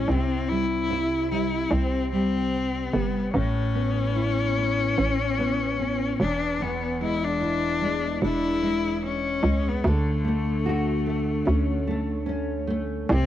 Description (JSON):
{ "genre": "acoustic pop", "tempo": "74 BPM", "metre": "4/4", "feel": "swing 55% on 16ths", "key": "unclear", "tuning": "A4 = 442 Hz", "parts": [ { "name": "clear cello", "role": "melody", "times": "0.0-13.3 s", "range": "A3 to E4", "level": "-27 LUFS", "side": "left 5 dB", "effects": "cassette tape" }, { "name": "nylon-string guitar", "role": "accompaniment", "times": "0.0-13.3 s", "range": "E2 to F#4", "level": "-26 LUFS", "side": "right 1 dB", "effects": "double-tracked left and right" }, { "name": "hollow knocking FM bass", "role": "bass", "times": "0.0-13.3 s", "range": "E1 to D2", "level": "-28 LUFS", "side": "right 1 dB", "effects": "none" } ], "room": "light reverb, studio ambience", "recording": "home recording on cassette", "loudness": "-22 LUFS", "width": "side -12 dB against mid", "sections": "0.1-13.1 A section", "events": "none", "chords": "0.1 C; 3.3 Aadd9; 6.2 E7; 9.8 Dmaj7" }